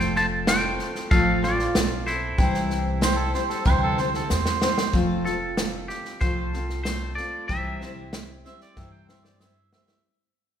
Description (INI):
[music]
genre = honky-tonk and classic country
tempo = 94 BPM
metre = 4/4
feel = straight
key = C major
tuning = A4 = 440 Hz
[part]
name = twangy electric guitar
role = melody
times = 0.0-9.4 s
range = E4 to A5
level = -27 LUFS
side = left 1 dB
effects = none
[part]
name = picked steel-string acoustic guitar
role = accompaniment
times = 0.0-10.1 s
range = C3 to C5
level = -27 LUFS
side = left 2 dB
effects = none
[part]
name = upright bass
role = bass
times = 0.0-9.7 s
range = F1 to G2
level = -31 LUFS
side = equal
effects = none
[part]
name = natural country drum kit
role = drums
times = 0.0-10.0 s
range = hi-hat, kick drum, snare drum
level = -26 LUFS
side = equal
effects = none
[part]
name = mellow harmonica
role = second line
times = 3.0-10.0 s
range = A4 to G5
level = -28 LUFS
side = right 7 dB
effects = none
[sound]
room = moderate scoring stage reverb, RT60 1.5 s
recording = recorded in a church or concert hall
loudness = -21 LUFS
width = side -9 dB against mid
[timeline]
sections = 0.0-4.9 A section; 4.9-10.0 B section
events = drum fill 4.3-4.9, 8.8-10.0; fade-out 4.9-10.0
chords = 0.0 F; 2.4 C; 4.9 F; 7.5 C